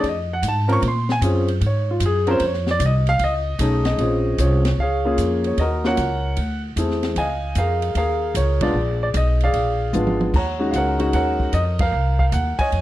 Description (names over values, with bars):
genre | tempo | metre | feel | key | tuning
jazz piano trio | 151 BPM | 4/4 | swing 67% on 8ths | Bb minor | A4 = 440 Hz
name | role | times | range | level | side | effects
warm grand piano | melody | 0.0-12.8 s | Ab3 to Db6 | -21 LUFS | equal | slapback echo
upright bass | bass | 0.0-12.8 s | Ab1 to Bb2 | -21 LUFS | equal | none
open jazz drum kit | drums | 0.0-12.8 s | crash cymbal, hi-hat, kick drum, ride cymbal, snare drum, toms | -29 LUFS | equal | none
room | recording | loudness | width
little or no reverb | dry, close 1970s-style studio recording | -18 LUFS | side -14 dB against mid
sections
0.0-4.0 A section; 4.0-12.8 B section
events
grand piano solo 0.0-4.0; band accent 8.6, 11.7; drum fill 9.9-10.3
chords
0.0 Fm; 0.8 Bbm7; 3.2 B13; 4.0 Bbm7; 5.6 Ebm7; 6.4 Dsus2; 7.2 Db69; 8.7 Bb7b9; 10.3 Ebm11; 11.9 Bbsus4/C